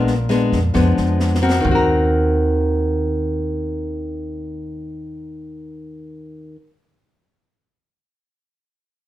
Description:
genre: bossa nova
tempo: 133 BPM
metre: 4/4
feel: straight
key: Eb harmonic minor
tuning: A4 = 440 Hz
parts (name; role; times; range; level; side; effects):
- nylon-string guitar; accompaniment; 0.0-6.7 s; Bb2 to Bb4; -20 LUFS; left 1 dB; none
- upright bass; bass; 0.0-6.6 s; Bb1 to F2; -21 LUFS; right 1 dB; none
- open jazz drum kit; drums; 0.1-1.8 s; kick drum, rim click, snare drum, toms; -25 LUFS; equal; none
room: light reverb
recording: dark, warm production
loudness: -16 LUFS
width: side -14 dB against mid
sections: 0.0-1.6 A section; 1.6-5.3 B section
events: drum fill 1.2-1.6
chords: 0.0 Bb7b9; 1.6 Ebm6

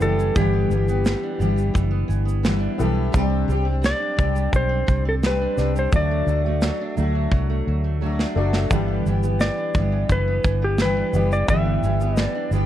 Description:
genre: acoustic pop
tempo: 86 BPM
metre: 4/4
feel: straight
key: G major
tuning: A4 = 444 Hz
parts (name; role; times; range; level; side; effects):
- clean lap steel guitar; melody; 0.0-12.5 s; G4 to E5; -24 LUFS; left 1 dB; none
- dark upright piano; accompaniment; 0.0-12.7 s; A3 to D5; -33 LUFS; left 6 dB; none
- fingerpicked steel-string acoustic guitar; accompaniment; 0.0-12.7 s; G2 to G4; -26 LUFS; equal; double-tracked left and right
- fingerpicked steel-string acoustic guitar; arpeggios; 0.0-12.7 s; E3 to D4; -32 LUFS; right 9 dB; none
- vintage muted fingered electric bass; bass; 0.0-12.7 s; F#1 to D2; -22 LUFS; equal; none
- modern studio drum kit; drums; 0.0-12.7 s; kick drum, shaker, snare drum; -24 LUFS; equal; none
room: small room ambience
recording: dark, warm production, faint mains hum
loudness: -19 LUFS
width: side -12 dB against mid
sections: 0.0-12.7 A section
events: drum fill 7.3-8.7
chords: 0.0 G6; 3.1 Csus2; 5.9 D; 8.7 G6

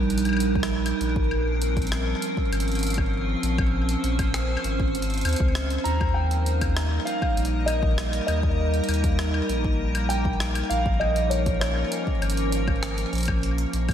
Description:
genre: IDM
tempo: 99 BPM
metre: 4/4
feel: straight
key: Eb major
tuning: A4 = 440 Hz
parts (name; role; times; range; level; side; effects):
- icy glass pad; sustained chords; 0.0-13.9 s; F3 to C5; -27 LUFS; right 1 dB; chorus, built-in reverb, sidechain pumping
- warm sub bass; bass; 0.0-13.9 s; Ab1 to Eb2; -26 LUFS; left 1 dB; none
- jungle sampler-style drum kit; drums; 0.1-13.9 s; hi-hat, rim click, woodblock; -32 LUFS; left 1 dB; ping-pong delay
- electronic kick drum; drums; 0.6-13.9 s; none; -27 LUFS; equal; none
- felt-muted upright piano; melody; 5.8-13.9 s; Db5 to Bb5; -30 LUFS; right 1 dB; analog chorus, diffuse ambient delay
room: moderate lush hall reverb, RT60 2.9 s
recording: dreamy mix soaked in reverb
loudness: -22 LUFS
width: side -9 dB against mid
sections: 0.0-13.9 A section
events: none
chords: 0.0 Ebmaj7; 1.0 Bbmadd9; 5.9 Eb; 10.7 Bbm

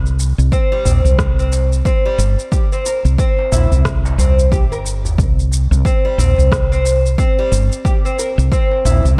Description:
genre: organic downtempo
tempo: 90 BPM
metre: 4/4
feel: swing 60% on 16ths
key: unclear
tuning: A4 = 440 Hz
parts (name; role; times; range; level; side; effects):
- woody fretless electric bass; bass; 0.0-9.2 s; G1 to C2; -16 LUFS; equal; sidechain pumping
- electronic shaker and rim click; drums; 0.1-9.2 s; none; -29 LUFS; equal; none
- darbuka; percussion; 0.2-9.0 s; none; -24 LUFS; equal; none
- oud; arpeggios; 0.5-9.0 s; G3 to Bb4; -22 LUFS; equal; delay
- electronic kick drum; drums; 0.5-8.7 s; none; -19 LUFS; equal; overdrive
room: light reverb, small room ambience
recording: dark, warm production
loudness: -15 LUFS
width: mono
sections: 0.0-9.2 A section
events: none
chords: 0.0 C5

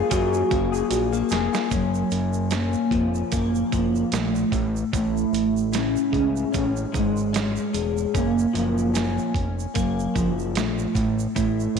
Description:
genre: indie pop, bedroom pop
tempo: 75 BPM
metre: 4/4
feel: swing 55% on 16ths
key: unclear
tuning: A4 = 440 Hz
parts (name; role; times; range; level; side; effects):
- warbly nostalgic lead; melody; 0.0-11.8 s; E#3 to G#4; -24 LUFS; right 2 dB; ensemble chorus, slapback echo
- electric guitar through a small old amp; accompaniment; 0.0-11.8 s; A2 to G#4; -27 LUFS; left 10 dB; lush chorus, vibrato effect
- fat analog bass; bass; 0.0-11.8 s; E1 to F#2; -28 LUFS; right 1 dB; none
- dusty soul sampler-style drum kit; drums; 0.1-11.8 s; hi-hat, kick drum, snare drum; -28 LUFS; right 3 dB; none
- egg shaker; percussion; 0.1-11.8 s; none; -42 LUFS; right 13 dB; none
room: moderate echo chamber reverb, RT60 2.1 s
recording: 1960s-style stereo with parts hard left and right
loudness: -21 LUFS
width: side -6 dB against mid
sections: 0.0-1.7 A section; 1.7-11.8 B section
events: drum fill 0.9-1.7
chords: 0.0 F#maj9; 1.7 F#maj7; 4.5 Amaj7; 8.1 F#maj7; 11.0 A

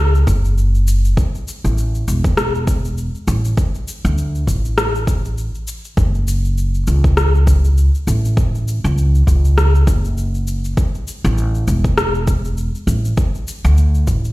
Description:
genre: organic downtempo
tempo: 100 BPM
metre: 4/4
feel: swing 57% on 16ths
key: F# minor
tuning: A4 = 440 Hz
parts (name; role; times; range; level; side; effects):
- upright bass; bass; 0.0-14.3 s; E1 to D2; -15 LUFS; equal; sidechain pumping
- electronic shaker and rim click; drums; 0.1-14.3 s; none; -23 LUFS; left 2 dB; overdrive
- electronic kick drum; drums; 0.3-14.2 s; none; -17 LUFS; equal; overdrive
room: little or no reverb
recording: played on a big sound system in a bare room, large studio reverb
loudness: -14 LUFS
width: side -19 dB against mid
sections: 0.0-14.3 A section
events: none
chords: none

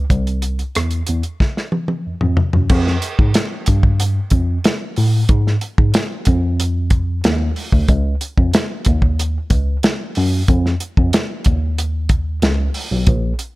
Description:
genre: lush 1970s-style soul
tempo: 93 BPM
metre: 4/4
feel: straight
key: F minor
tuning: A4 = 440 Hz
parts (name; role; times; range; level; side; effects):
- mellow tine electric piano; bass; 0.0-13.3 s; Bb1 to A2; -17 LUFS; equal; medium stereo tremolo
- warm soul drum kit; drums; 0.1-13.5 s; crash cymbal, hi-hat, kick drum, rim click, snare drum, toms; -16 LUFS; equal; none
room: little or no reverb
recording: none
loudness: -15 LUFS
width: side -20 dB against mid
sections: 0.0-2.7 A section; 2.7-13.6 B section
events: drum fill 1.4-2.7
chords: none

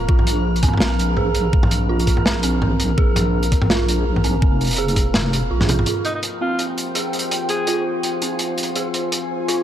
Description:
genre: half-time drum and bass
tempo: 166 BPM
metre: 4/4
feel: swing 56% on 16ths, half-time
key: F minor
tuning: A4 = 440 Hz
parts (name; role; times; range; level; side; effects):
- dark detuned synth bell; arpeggios; 0.0-9.6 s; C4 to Ab4; -25 LUFS; right 4 dB; chorus, phaser, vintage 12-bit sampler grit, low-pass filter, ping-pong delay
- deep soft wobble bass; bass; 0.0-5.9 s; F1 to Bb1; -20 LUFS; equal; chorus
- metallic inharmonic drone; texture; 0.0-9.6 s; F3 to Bb4; -26 LUFS; left 1 dB; chorus, built-in reverb
- electronic kick drum; drums; 0.1-5.0 s; none; -17 LUFS; equal; overdrive
- crunchy breakbeat drum kit; drums; 0.2-9.6 s; hi-hat, snare drum, toms; -22 LUFS; equal; none
- dark analog pad; sustained chords; 6.7-9.6 s; F4 to Ab5; -27 LUFS; left 1 dB; chorus, sidechain pumping
- clear alto saxophone; melody; 6.1-7.9 s; Eb4 to Ab4; -27 LUFS; left 1 dB; tape echo
room: light reverb, studio ambience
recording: none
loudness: -17 LUFS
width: side -10 dB against mid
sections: 0.0-5.9 A section; 5.9-9.6 B section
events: drum fill 5.6; filter sweep on synth bell 5.9-9.6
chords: 0.1 Bb5; 5.9 Fm

